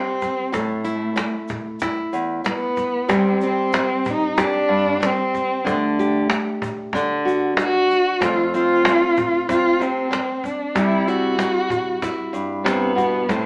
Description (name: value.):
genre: acoustic folk duo or small band.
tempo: 94 BPM.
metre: 4/4.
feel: straight.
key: unclear.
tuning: A4 = 440 Hz.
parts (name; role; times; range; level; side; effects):
dark cello; second line; 0.0-13.5 s; A3 to F#4; -23 LUFS; equal; none.
nylon-string guitar; accompaniment; 0.0-13.5 s; E2 to G4; -25 LUFS; equal; none.
cajon; percussion; 0.2-13.4 s; none; -27 LUFS; equal; none.
egg shaker; percussion; 0.2-13.4 s; none; -51 LUFS; equal; none.
room: moderate studio reverb, RT60 0.8 s.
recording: band playing live in one room, small speaker sound.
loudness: -20 LUFS.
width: mono.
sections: 0.0-13.5 A section.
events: cello solo 0.0-13.5.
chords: 0.0 Fsus2 (rootless); 0.5 A5; 3.1 C5; 5.7 Dsus4; 6.9 D; 8.2 F; 10.8 C.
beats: | 0.53 1.17 1.81 2.46 | 3.10 3.74 4.38 5.02 | 5.66 6.30 6.94 7.58 | 8.21 8.85 9.49 10.12 | 10.76 11.39 12.03 12.66 | 13.30.